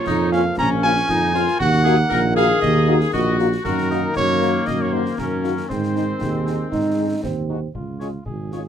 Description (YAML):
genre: military-style march for wind band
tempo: 117 BPM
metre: 2/4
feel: straight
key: unclear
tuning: A4 = 440 Hz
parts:
  - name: mellow cornet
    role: melody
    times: 0.0-8.7 s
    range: F4 to Bb5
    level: -23 LUFS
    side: right 2 dB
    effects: none
  - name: warm woodwind section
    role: second line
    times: 0.0-8.6 s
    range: Bb3 to Db5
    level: -24 LUFS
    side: left 4 dB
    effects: none
  - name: warm trombone section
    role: sustained chords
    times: 0.0-7.5 s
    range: Eb3 to Bb3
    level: -28 LUFS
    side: left 4 dB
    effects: none
  - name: mellow tuba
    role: bass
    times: 0.1-8.7 s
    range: Ab1 to Ab2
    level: -22 LUFS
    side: right 3 dB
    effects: none
  - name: concert snare drum, concert bass drum and clash cymbals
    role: drums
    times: 0.1-8.6 s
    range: none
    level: -33 LUFS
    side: left 2 dB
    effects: none
  - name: mellow French horn section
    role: accompaniment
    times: 0.3-8.6 s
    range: Ab3 to Gb4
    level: -23 LUFS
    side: left 5 dB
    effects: none
  - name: clear euphonium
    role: second line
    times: 6.2-7.7 s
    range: Ab3 to Eb4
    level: -24 LUFS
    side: right 3 dB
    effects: none
room: light reverb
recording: close, detailed microphones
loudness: -17 LUFS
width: side -9 dB against mid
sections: 0.0-7.7 A section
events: none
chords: 0.0 Bbm; 1.6 Ebm; 3.6 Ebm/Gb; 5.7 Ab; 7.7 Db